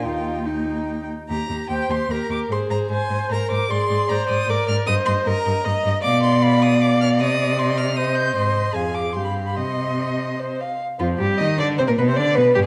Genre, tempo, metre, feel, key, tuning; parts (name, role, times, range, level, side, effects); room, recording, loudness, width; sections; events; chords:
quick classical-period movement for string quartet; 152 BPM; 3/4; rubato; Eb major, C minor from 6.0 s; A4 = 440 Hz
rich violin; melody; 0.0-12.7 s; F4 to G6; -29 LUFS; equal
dark violin; second line; 0.0-12.7 s; Eb4 to F5; -28 LUFS; equal
rich viola; accompaniment; 0.0-12.7 s; F3 to Eb5; -27 LUFS; equal
rich cello; bass; 0.0-12.6 s; Eb2 to Eb3; -25 LUFS; equal
wet recital hall reverb, RT60 1.6 s; dark, warm production; -21 LUFS; mono
0.0-1.3 A section; 1.3-10.8 A section; 10.8-12.7 B section
0.1 Eb; 2.5 Ab; 4.9 Eb/G; 6.0 Bdim; 7.2 Cm; 8.4 Ab; 8.7 Fm; 9.1 G7; 9.6 Cm; 12.0 G/B